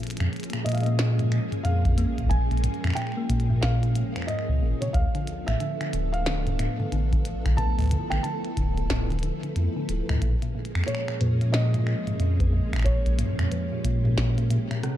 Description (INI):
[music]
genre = IDM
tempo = 91 BPM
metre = 4/4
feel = swing 62% on 16ths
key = unclear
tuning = A4 = 440 Hz
[part]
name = soft string machine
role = sustained chords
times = 0.0-15.0 s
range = F3 to A4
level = -33 LUFS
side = right 1 dB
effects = ensemble chorus
[part]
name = thumb-piano-like synth pluck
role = arpeggios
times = 0.0-14.9 s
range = D2 to Bb3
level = -32 LUFS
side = left 2 dB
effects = chorus, ping-pong delay
[part]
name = glitchy drum kit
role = drums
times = 0.0-15.0 s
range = finger snaps, hi-hat, rim click, snare drum, toms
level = -33 LUFS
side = equal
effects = none
[part]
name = warm sub bass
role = bass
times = 0.2-14.6 s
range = D1 to Bb2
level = -24 LUFS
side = equal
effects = none
[part]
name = felt-muted upright piano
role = melody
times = 0.6-15.0 s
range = Db5 to A5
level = -34 LUFS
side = right 1 dB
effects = vintage 12-bit sampler grit, dub echo
[part]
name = electronic kick drum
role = drums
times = 1.9-14.3 s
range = none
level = -26 LUFS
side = equal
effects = none
[sound]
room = digital ambience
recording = dark, warm production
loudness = -23 LUFS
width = side -12 dB against mid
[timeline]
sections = 0.0-15.0 A section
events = none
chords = 0.0 Bbm7; 4.9 Dm6; 10.2 Bbm7